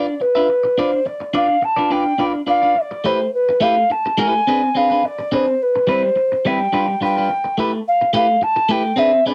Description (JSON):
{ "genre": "disco", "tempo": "106 BPM", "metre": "4/4", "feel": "straight", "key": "D dorian", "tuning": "A4 = 440 Hz", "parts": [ { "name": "mellow hollow alto ocarina", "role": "melody", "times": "0.0-9.3 s", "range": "B4 to A5", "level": "-19 LUFS", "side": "equal", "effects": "cassette tape" }, { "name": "clean electric guitar", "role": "accompaniment", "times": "0.0-9.3 s", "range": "G3 to E5", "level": "-22 LUFS", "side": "equal", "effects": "phaser, cassette tape" } ], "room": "light reverb", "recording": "home recording on cassette", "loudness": "-17 LUFS", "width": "mono", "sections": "0.0-2.2 A section; 2.2-9.3 B section", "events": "none", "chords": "0.0 Dm6; 3.0 A7sus2; 4.5 Fm6/C; 5.6 Cmaj7/G; 6.7 G7; 7.6 G13/A" }